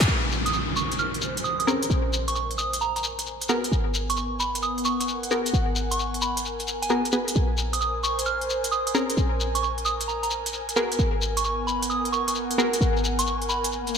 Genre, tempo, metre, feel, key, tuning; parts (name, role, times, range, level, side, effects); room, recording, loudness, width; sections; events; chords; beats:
UK garage, two-step garage; 132 BPM; 4/4; swing 66% on 16ths; Bb phrygian; A4 = 440 Hz
short 808-style bass; bass; 0.0-14.0 s; Ab1 to Eb2; -28 LUFS; equal
garage drum kit; drums; 0.0-13.9 s; handclaps, hi-hat; -30 LUFS; right 2 dB; gated reverb
shekere; percussion; 0.0-14.0 s; -32 LUFS; left 4 dB
airy breathy pad; texture; 0.0-14.0 s; Cb4 to Ab5; -31 LUFS; equal; chorus
downlifter and swell; sound effects; 0.1-3.7, 13.8-14.0 s; -31 LUFS; equal
soft synth bell; melody; 0.5-13.7 s; Ab5 to F6; -28 LUFS; right 3 dB; chorus, ping-pong delay
punchy chord stab; stabs; 1.7-14.0 s; Cb4 to Cb5; -27 LUFS; equal; chorus, vintage 12-bit sampler grit, ping-pong delay
moderate lush hall reverb, RT60 1.7 s, digital ambience; bright 1980s-style digital production; -22 LUFS; side -6 dB against mid
0.1-14.0 A section
band accent 0.0; swell 13.8
0.1 Bbm9; 3.7 Abm9; 7.4 Bbm9; 11.0 Abm9
| 0.08 0.54 0.99 1.45 | 1.90 2.35 2.81 3.26 | 3.72 4.17 4.63 5.08 | 5.54 5.99 6.45 6.90 | 7.36 7.81 8.26 8.72 | 9.17 9.63 10.08 10.54 | 10.99 11.45 11.90 12.36 | 12.81 13.26 13.72